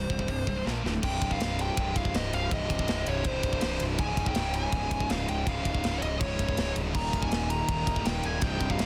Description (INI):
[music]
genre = heavy metal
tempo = 162 BPM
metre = 4/4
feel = straight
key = C phrygian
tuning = A4 = 440 Hz
[part]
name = high-gain lead guitar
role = melody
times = 0.0-8.9 s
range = C5 to Bb5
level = -35 LUFS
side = equal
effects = distortion, delay
[part]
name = heavy high-gain guitar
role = riff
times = 0.0-8.9 s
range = C2 to Bb3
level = -40 LUFS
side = equal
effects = none
[part]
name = overdriven semi-hollow guitar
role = riff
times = 0.0-1.0, 6.9-8.9 s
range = C2 to Eb4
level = -38 LUFS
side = equal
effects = none
[part]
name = tight distorted guitar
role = riff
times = 0.0-8.9 s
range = C2 to Bb3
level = -38 LUFS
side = equal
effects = distortion
[part]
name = fuzz picked electric bass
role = bass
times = 0.0-8.9 s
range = C1 to Bb1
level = -35 LUFS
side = equal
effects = overdrive
[part]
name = tight metal drum kit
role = drums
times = 0.1-8.9 s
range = crash cymbal, hi-hat, kick drum, ride cymbal, snare drum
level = -34 LUFS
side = equal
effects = none
[sound]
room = little or no reverb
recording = dense, heavily limited modern master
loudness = -29 LUFS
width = mono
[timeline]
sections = 0.0-1.0 A section; 1.0-8.9 B section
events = drum fill 0.7-1.0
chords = 0.0 C5; 0.7 Bb5; 0.8 D5; 1.0 Cm; 4.0 Db; 6.9 Eb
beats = 0.28 0.66 | 1.03 1.40 1.77 2.14 | 2.51 2.88 3.25 3.62 | 3.99 4.36 4.73 5.10 | 5.47 5.84 6.21 6.58 | 6.95 7.31 7.68 8.05 | 8.42 8.79